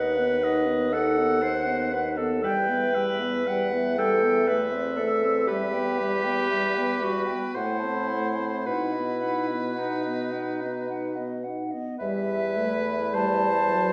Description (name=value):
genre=classical, slow romantic movement for wind quintet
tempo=52-61 BPM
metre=3/4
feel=rubato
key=E minor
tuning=A4 = 441 Hz
part: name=concert flute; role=melody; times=0.0-13.9 s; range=C5 to A5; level=-34 LUFS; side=equal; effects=none
part: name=clear oboe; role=second line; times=0.0-13.9 s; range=B4 to G5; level=-34 LUFS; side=equal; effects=none
part: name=dark French horn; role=accompaniment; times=0.0-13.9 s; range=F#3 to D#4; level=-34 LUFS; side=equal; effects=none
part: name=warm clarinet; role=accompaniment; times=0.0-13.9 s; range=D#4 to C5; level=-30 LUFS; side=equal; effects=none
part: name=mellow bassoon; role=bass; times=0.0-13.9 s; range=D#2 to B2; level=-32 LUFS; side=equal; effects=none
room=wet recital hall reverb, RT60 1.4 s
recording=recorded in a church or concert hall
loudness=-26 LUFS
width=mono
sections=0.0-12.0 A section; 12.0-13.9 B section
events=none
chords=0.0 B/D#; 2.4 Em; 4.5 Am/E; 5.5 Em; 7.6 F#dim/A; 8.7 B; 12.0 Em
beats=0.43 1.43 | 2.44 3.47 4.48 | 5.47 6.50 7.56 | 8.66 9.77 10.89 | 12.00 13.13